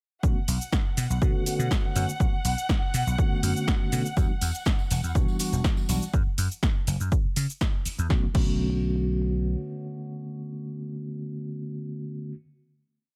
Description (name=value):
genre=filtered disco house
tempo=122 BPM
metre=4/4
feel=straight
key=B minor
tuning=A4 = 441 Hz
part: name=mellow tine electric piano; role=accompaniment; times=0.2-12.3 s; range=D3 to F#4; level=-33 LUFS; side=equal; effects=phaser, sidechain pumping
part: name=muted studio string section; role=sustained chords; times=0.2-6.1 s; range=F#5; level=-38 LUFS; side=equal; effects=sidechain pumping
part: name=vintage slap bass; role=bass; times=0.2-9.5 s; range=E1 to C#3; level=-29 LUFS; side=equal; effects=sidechain pumping
part: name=electronic kick drum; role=drums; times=0.2-8.5 s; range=none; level=-27 LUFS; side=equal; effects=none
part: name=punchy analog drum machine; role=drums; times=0.2-8.5 s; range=crash cymbal, hi-hat, shaker, snare drum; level=-35 LUFS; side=equal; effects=sidechain pumping on perc, sidechain pumping on hats, sidechain pumping on cymbals
part: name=tambourine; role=percussion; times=4.2-6.1 s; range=none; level=-44 LUFS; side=equal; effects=sidechain pumping on perc
room=digital ambience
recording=none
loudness=-27 LUFS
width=mono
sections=0.2-8.1 drop; 8.1-12.0 final chord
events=drop 0.2-8.1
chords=0.2 Bm7; 4.2 Em7; 6.1 F#5; 8.1 Bm7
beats=| 0.23 0.73 1.22 1.71 | 2.20 2.69 3.19 3.68 | 4.17 4.66 5.15 5.64 | 6.13 6.63 7.12 7.61 | 8.10 8.59 9.09 9.58 | 10.07 10.56 11.05 11.54